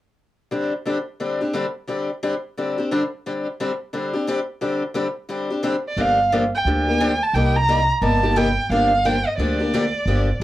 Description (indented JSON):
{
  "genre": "acoustic string swing (jazz manouche)",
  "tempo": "176 BPM",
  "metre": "4/4",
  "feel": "swing 61% on 8ths",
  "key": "unclear",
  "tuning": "A4 = 443 Hz",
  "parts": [
    { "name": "picked steel-string acoustic guitar", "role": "accompaniment", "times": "0.5-10.4 s", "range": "C3 to G4", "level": "-22 LUFS", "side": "left 2 dB", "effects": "none" },
    { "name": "warm violin", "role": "melody", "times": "5.9-10.4 s", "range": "D5 to Bb5", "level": "-20 LUFS", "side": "right 2 dB", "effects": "none" },
    { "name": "upright bass", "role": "bass", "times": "6.0-10.4 s", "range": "G1 to D2", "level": "-22 LUFS", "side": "right 1 dB", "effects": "none" }
  ],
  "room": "moderate studio ambience, RT60 0.5 s",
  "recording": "worn, warbling old tape, cassette tape, warbly pitch drift",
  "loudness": "-19 LUFS",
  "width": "side -14 dB against mid",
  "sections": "0.5-6.0 A section; 6.0-10.4 B section",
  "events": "none",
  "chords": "0.5 D7sus4; 6.0 Gm7; 7.3 Cm7; 8.7 Gm7"
}